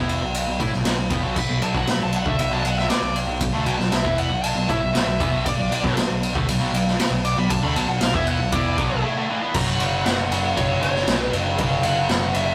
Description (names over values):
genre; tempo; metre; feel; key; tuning
hard rock; 118 BPM; 4/4; straight; B minor; A4 = 440 Hz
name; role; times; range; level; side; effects
cranked stack guitar; riff; 0.0-12.5 s; F#2 to E4; -32 LUFS; equal; overdrive
distorted electric guitar; riff; 0.0-12.5 s; F#2 to E4; -32 LUFS; equal; none
picked electric bass; bass; 0.0-12.5 s; F#1 to A2; -30 LUFS; equal; none
raw garage drum kit; drums; 0.1-12.5 s; crash cymbal, kick drum, ride cymbal, snare drum; -25 LUFS; equal; none
high-gain lead guitar; melody; 1.4-12.5 s; C#5 to D6; -28 LUFS; equal; distortion
crunchy overdriven guitar; riff; 1.5-12.5 s; F#2 to E4; -36 LUFS; equal; none
room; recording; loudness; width
light reverb; rough rehearsal-room recording, tube saturation; -22 LUFS; mono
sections
0.0-9.5 A section; 9.5-12.5 B section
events
lead electric guitar solo 0.0-9.5; break 9.0-9.5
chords
0.0 Bm; 9.5 F#5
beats
0.34 0.85 | 1.36 1.88 2.39 2.90 | 3.41 3.92 4.43 4.95 | 5.46 5.97 6.48 6.99 | 7.50 8.01 8.52 9.03 | 9.54 10.05 10.56 11.07 | 11.59 12.10